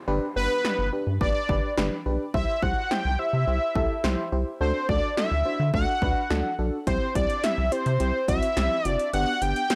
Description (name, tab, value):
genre	synth-pop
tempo	106 BPM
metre	4/4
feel	straight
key	G major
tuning	A4 = 440 Hz
part	downlifter	sound effects	0.0-2.3 s	none	-52 LUFS	equal	none
part	FM electric piano with tremolo	accompaniment	0.1-9.8 s	B3 to C5	-33 LUFS	equal	none
part	rubbery square bass	bass	0.1-9.5 s	F#1 to D3	-29 LUFS	equal	none
part	fat analog lead	melody	0.4-9.8 s	B4 to G5	-29 LUFS	equal	tape echo
part	80s electronic pad drums	drums	0.6-9.8 s	hi-hat, kick drum, snare drum	-31 LUFS	equal	none
room	light reverb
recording	dry, gritty hardware recording, transformer saturation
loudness	-25 LUFS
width	mono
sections	0.0-9.8 A section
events	none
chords	0.1 G; 2.3 C; 4.6 Dadd9; 6.9 C; 9.1 G